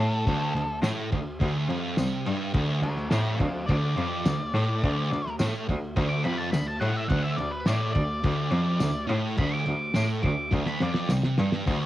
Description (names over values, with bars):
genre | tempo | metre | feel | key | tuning
garage rock duo or trio | 105 BPM | 4/4 | straight | unclear | A4 = 440 Hz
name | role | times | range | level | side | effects
octave-fuzz lead guitar | melody | 0.0-11.1 s | C4 to D6 | -32 LUFS | left 1 dB | distortion, cassette tape
thick fuzz guitar | riff | 0.0-11.9 s | D2 to C3 | -28 LUFS | equal | distortion, cassette tape
clear cello | bass | 0.0-11.8 s | C2 to A2 | -30 LUFS | equal | none
cloth-damped thuddy drum kit | drums | 0.3-11.8 s | crash cymbal, kick drum, snare drum | -31 LUFS | equal | cassette tape
tambourine | percussion | 0.8-11.9 s | none | -44 LUFS | left 3 dB | none
room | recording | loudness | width
light reverb | home recording on cassette | -24 LUFS | side -14 dB against mid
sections
0.0-11.7 A section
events
lead electric guitar solo 0.0-11.7; drum fill 10.5-11.7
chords
0.0 D5